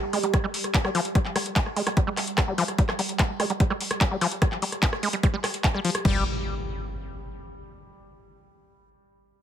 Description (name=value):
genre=psychedelic trance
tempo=147 BPM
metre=4/4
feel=straight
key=unclear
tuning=A4 = 442 Hz
part: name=overtone-sweeping drone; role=sustained chords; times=0.0-6.1 s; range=G3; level=-36 LUFS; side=right 4 dB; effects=chorus, built-in reverb, sidechain pumping
part: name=overdriven acid bass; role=riff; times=0.1-6.2 s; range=F3 to Ab3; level=-29 LUFS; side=moving between left 5 dB and right 5 dB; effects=auto-pan, sidechain pumping, tape echo
part: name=techno drum kit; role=drums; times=0.1-6.1 s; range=crash cymbal, handclaps, hi-hat, rim click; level=-28 LUFS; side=equal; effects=none
part: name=electronic kick drum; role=drums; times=0.3-6.1 s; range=none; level=-22 LUFS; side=equal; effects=none
part: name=round analog bass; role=bass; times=6.0-6.2 s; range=G1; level=-28 LUFS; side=equal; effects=none
part: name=impact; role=sound effects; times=6.1-7.7 s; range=none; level=-34 LUFS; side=equal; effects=none
room=light reverb, digital ambience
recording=none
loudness=-22 LUFS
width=side -10 dB against mid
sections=0.0-6.0 A section; 6.0-7.7 B section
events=filter sweep on acid bass 0.0-6.0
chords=0.0 G5; 6.0 N.C.